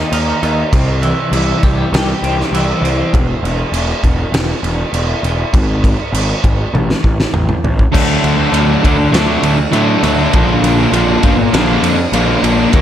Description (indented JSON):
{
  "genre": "quiet-loud alternative rock",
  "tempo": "100 BPM",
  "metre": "4/4",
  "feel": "straight",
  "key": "unclear",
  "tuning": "A4 = 440 Hz",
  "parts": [
    { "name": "twelve-string electric guitar", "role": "arpeggios", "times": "0.0-3.1 s", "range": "C3 to G4", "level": "-18 LUFS", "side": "equal", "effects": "tremolo, analog delay" },
    { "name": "fuzz picked electric bass", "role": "bass", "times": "0.0-12.8 s", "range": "E1 to A2", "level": "-16 LUFS", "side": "equal", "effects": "overdrive" },
    { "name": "loose indie drum kit", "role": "drums", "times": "0.1-12.8 s", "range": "crash cymbal, kick drum, ride cymbal, snare drum, toms", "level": "-16 LUFS", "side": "equal", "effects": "none" },
    { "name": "distorted electric guitar", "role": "riff", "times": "7.9-12.8 s", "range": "Bb2 to Eb4", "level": "-12 LUFS", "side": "left 1 dB", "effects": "distortion" }
  ],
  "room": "light reverb, small room ambience",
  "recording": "none",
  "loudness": "-11 LUFS",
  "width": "side -10 dB against mid",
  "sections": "0.0-7.9 A section; 7.9-12.8 B section",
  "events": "drum fill 6.7-7.9",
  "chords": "0.0 Eb; 0.7 C; 3.1 N.C.; 7.9 D; 10.3 Bb"
}